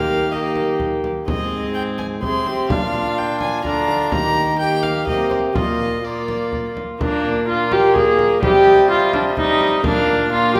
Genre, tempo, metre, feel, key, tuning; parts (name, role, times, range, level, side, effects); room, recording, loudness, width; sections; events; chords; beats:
classical, renaissance-style consort dance; 126 BPM; 3/4; straight; Bb mixolydian; A4 = 441 Hz
warm violin; melody; 0.0-10.6 s; Bb4 to C6; -28 LUFS; equal
warm viola; second line; 0.0-10.6 s; D4 to Ab4; -21 LUFS; equal
rich viola; accompaniment; 0.0-10.6 s; G3 to D4; -25 LUFS; equal
clear trombone; bass; 0.0-10.6 s; Ab2 to Eb3; -28 LUFS; equal
frame drum; percussion; 0.6-10.6 s; -29 LUFS; equal
wet recital hall reverb, RT60 1.4 s; heard from further back in the room; -18 LUFS; mono
0.0-7.0 A section; 7.0-10.6 A section
0.0 Eb; 1.3 Ab; 2.7 Bb; 4.1 Eb; 5.5 Bb; 8.4 Cm; 9.8 Bb
0.31 0.79 | 1.27 1.75 2.22 | 2.70 3.17 3.64 | 4.12 4.59 5.07 | 5.55 6.03 6.52 | 7.00 7.48 7.95 | 8.43 8.90 9.38 | 9.85 10.32